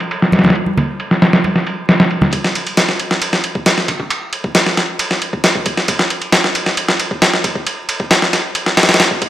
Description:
breakbeat; 135 BPM; 4/4; straight
dusty soul sampler-style drum kit; drums; 0.0-9.3 s; kick drum, ride cymbal, snare drum; -13 LUFS; equal; high-pass filter on snare, low-pass filter on snare, high-pass filter on cymbals, low-pass filter on cymbals, high-pass filter on kick, low-pass filter on kick, high-pass filter on room, low-pass filter on room
congas; percussion; 0.3-2.3 s; -19 LUFS; right 1 dB
light reverb; vinyl crackle; -12 LUFS; side -13 dB against mid
0.0-2.3 A section; 2.3-9.3 B section
build-up 2.3-9.3

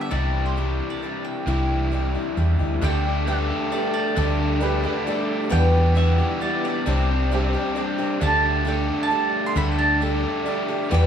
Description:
rock; 133 BPM; 3/4; straight; A4 = 440 Hz
mandolin; melody; 0.0-11.1 s; C5 to C6; -27 LUFS; right 2 dB
picked old ladder-braced acoustic guitar; accompaniment; 0.0-11.1 s; C3 to A4; -28 LUFS; left 4 dB
overdriven electric guitar; riff; 0.0-11.1 s; E2 to G4; -26 LUFS; equal
hollow-body short-scale fingered electric bass; bass; 0.1-11.1 s; C2 to E2; -22 LUFS; equal
mellow tonewheel organ; sustained chords; 2.5-11.1 s; G3 to D5; -36 LUFS; left 1 dB
reed electric piano; accompaniment; 2.8-11.1 s; D4 to E5; -33 LUFS; right 6 dB; fast tremolo
clear upright piano; second line; 4.6-8.1 s; G4 to D5; -30 LUFS; right 3 dB
moderate large studio reverb, RT60 1.1 s; band playing live in one room; -20 LUFS; side -8 dB against mid
0.0-2.8 A section; 2.8-11.1 B section
0.1 Cadd9; 2.8 Dsus4; 5.5 Em7; 6.9 Csus2; 8.2 Dsus4

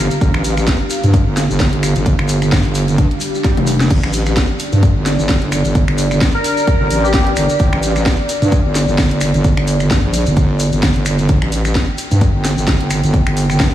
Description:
bass house; 130 BPM; 4/4; swing 56% on 16ths; A4 = 438 Hz
dark analog pad; sustained chords; 0.0-13.7 s; D4 to G5; -23 LUFS; equal; chorus, sidechain pumping
wobble bass; bass; 0.0-13.7 s; F1 to G2; -15 LUFS; equal; chorus, tube saturation, sidechain pumping
garage drum kit; drums; 0.1-13.7 s; crash cymbal, finger snaps, hi-hat, snare drum, toms; -21 LUFS; equal; overdrive, studio reverb
shekere; percussion; 0.1-13.7 s; -28 LUFS; left 3 dB
electronic kick drum; drums; 0.2-13.7 s; -15 LUFS; equal; studio reverb
swell; sound effects; 3.1-3.9 s; -30 LUFS; equal
airy dreamy lead; melody; 6.3-7.2 s; G4 to Bb4; -25 LUFS; left 2 dB; chorus, analog delay
light reverb; studio reverb; -12 LUFS; side -12 dB against mid
0.0-13.7 A section
swell 3.1-3.9; drum fill 3.4-3.9
0.0 G5

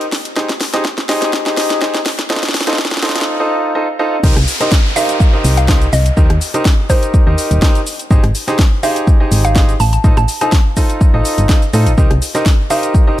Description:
piano house; 124 BPM; 4/4; swing 54% on 16ths; C minor; A4 = 439 Hz
clear concert grand piano; riff; 0.0-13.2 s; Eb4 to Eb5; -18 LUFS; equal; sidechain pumping, tape echo
house drum kit; drums; 0.0-13.1 s; crash cymbal, hi-hat, rim click, shaker, snare drum; -19 LUFS; equal; overdrive
electronic kick drum; drums; 0.4-13.0 s; -11 LUFS; equal; overdrive, high-pass filter on kick
solid FM bass; bass; 4.2-12.2 s; Eb1 to A2; -14 LUFS; equal; sidechain pumping
downlifter; sound effects; 4.2-8.1 s; -24 LUFS; equal
hollow square pluck; melody; 5.0-12.9 s; C5 to A5; -20 LUFS; right 1 dB; chorus, tape echo
little or no reverb; high-pass filter; -11 LUFS; side -14 dB against mid
0.0-4.2 A section; 4.2-13.2 B section
build-up 0.0-4.2; drum fill 0.0-3.3; filter sweep 0.0-4.2; drop 4.2-13.2
0.1 Abmaj7; 2.1 F7; 4.2 Cm7; 6.2 Eb6; 7.9 Abmaj7; 9.8 F7/A; 12.0 Cm7

